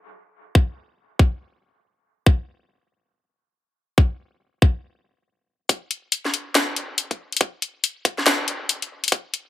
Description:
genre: dubstep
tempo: 140 BPM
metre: 4/4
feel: swing 61% on 16ths, half-time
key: none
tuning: none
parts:
  - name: electronic kick drum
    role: drums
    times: 0.6-9.2 s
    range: none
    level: -16 LUFS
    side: left 1 dB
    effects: high-pass filter on kick
  - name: garage drum kit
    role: drums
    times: 5.7-9.4 s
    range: hi-hat, snare drum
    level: -20 LUFS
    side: left 2 dB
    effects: high-pass filter on snare, high-pass filter on hats, high-pass filter on cymbals
room: light reverb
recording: none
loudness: -20 LUFS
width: side -14 dB against mid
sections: 0.0-5.7 A section; 5.7-9.5 B section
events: build-up 5.7-9.5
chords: none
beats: 0.12 | 0.55 0.98 1.41 1.84 | 2.27 2.69 3.12 3.55 | 3.98 4.41 4.84 5.26 | 5.69 6.12 6.55 6.98 | 7.41 7.84 8.27 8.69 | 9.12

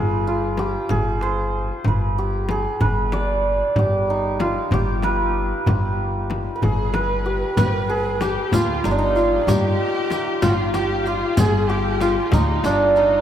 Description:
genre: Persian modal ensemble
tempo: 63 BPM (dotted quarters)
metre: 6/8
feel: straight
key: G dastgah homayun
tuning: A4 = 435 Hz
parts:
  - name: santur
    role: melody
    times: 0.0-13.2 s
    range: D4 to D5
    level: -21 LUFS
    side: right 1 dB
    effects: none
  - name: upright bass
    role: bass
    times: 0.0-13.2 s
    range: G1 to G2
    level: -24 LUFS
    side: equal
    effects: none
  - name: frame drum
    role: percussion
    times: 0.6-12.8 s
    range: none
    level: -29 LUFS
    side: left 3 dB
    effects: none
  - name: tombak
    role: percussion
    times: 0.6-12.8 s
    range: none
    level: -26 LUFS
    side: equal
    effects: none
  - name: breathy mellow low ney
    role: second line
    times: 6.6-12.9 s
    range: D4 to C5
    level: -27 LUFS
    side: left 2 dB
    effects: none
  - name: warm studio violin section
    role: second line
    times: 6.6-13.2 s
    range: Eb4 to B4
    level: -28 LUFS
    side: equal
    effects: none
  - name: riq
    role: percussion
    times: 7.6-13.0 s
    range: none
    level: -33 LUFS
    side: right 3 dB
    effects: none
room: wet cathedral reverb, RT60 5.0 s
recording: in a vast, echoing space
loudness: -18 LUFS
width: side -10 dB against mid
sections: 0.0-7.6 A section; 7.6-13.2 B section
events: none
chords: none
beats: 0.90 | 1.85 2.81 | 3.76 4.72 | 5.67 6.62 | 7.57 8.53 | 9.47 10.43 | 11.38 12.32

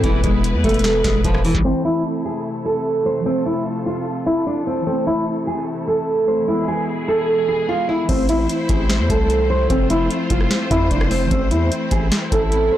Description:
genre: hip hop, trap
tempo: 149 BPM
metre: 4/4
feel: half-time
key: A harmonic minor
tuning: A4 = 440 Hz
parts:
  - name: nylon-string guitar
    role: melody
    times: 0.0-12.8 s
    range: E3 to C5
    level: -19 LUFS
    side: right 1 dB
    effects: low-pass filter, digital delay
  - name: warbly lo-fi synth keys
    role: accompaniment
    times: 0.0-12.8 s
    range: E3 to C4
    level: -26 LUFS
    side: left 1 dB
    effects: chorus, low-pass filter
  - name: warm symphonic string section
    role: sustained chords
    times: 0.0-12.8 s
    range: B2 to C5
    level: -28 LUFS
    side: left 1 dB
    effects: none
  - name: long sustained 808-style bass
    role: bass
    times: 0.0-1.6, 8.1-12.7 s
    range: E1 to F2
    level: -21 LUFS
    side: equal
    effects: none
  - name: booming analog drum machine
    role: drums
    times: 0.0-1.7, 8.1-12.6 s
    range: crash cymbal, hi-hat, kick drum, rim click, snare drum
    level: -20 LUFS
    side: equal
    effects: none
room: light reverb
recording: blown-out, overdriven recording, overdrive, low-pass filter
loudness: -16 LUFS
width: side -12 dB against mid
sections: 0.0-1.6 A section; 1.6-8.1 B section; 8.1-12.8 C section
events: filter sweep 1.6-8.1, 8.1-12.8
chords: 0.0 E; 1.6 Am; 6.5 E; 8.1 Am; 9.7 F; 11.3 Am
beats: | 0.04 0.44 0.84 1.25 | 1.65 2.05 2.45 2.86 | 3.26 3.66 4.06 4.47 | 4.87 5.27 5.67 6.08 | 6.48 6.88 7.29 7.69 | 8.09 8.49 8.90 9.30 | 9.70 10.10 10.51 10.91 | 11.31 11.71 12.12 12.52

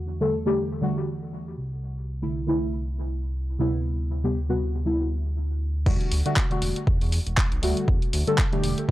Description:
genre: deep house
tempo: 119 BPM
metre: 4/4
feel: swing 56% on 16ths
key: E minor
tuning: A4 = 440 Hz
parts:
  - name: deep mellow chord stab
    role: stabs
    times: 0.0-8.9 s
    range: C3 to A4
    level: -26 LUFS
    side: equal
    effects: chorus, phaser, vintage 12-bit sampler grit, sidechain pumping, analog delay
  - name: smooth synth bass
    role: bass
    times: 0.0-8.9 s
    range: E1 to E2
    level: -28 LUFS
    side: equal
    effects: none
  - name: deep house drum kit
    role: drums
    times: 5.9-8.9 s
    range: crash cymbal, handclaps, hi-hat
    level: -29 LUFS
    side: equal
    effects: none
  - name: electronic kick drum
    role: drums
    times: 5.9-8.9 s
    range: none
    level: -23 LUFS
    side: equal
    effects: none
room: little or no reverb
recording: dry, gritty hardware recording, transformer saturation, cassette tape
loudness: -23 LUFS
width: side -15 dB against mid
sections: 0.0-5.9 A section; 5.9-8.9 B section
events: drop 5.9-8.9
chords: 0.0 Em11; 1.6 C69; 3.6 D13sus4; 5.9 Em11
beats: 0.32 0.82 1.32 | 1.83 2.33 2.84 3.34 | 3.85 4.35 4.86 5.36 | 5.86 6.37 6.87 7.38 | 7.88 8.38 8.89

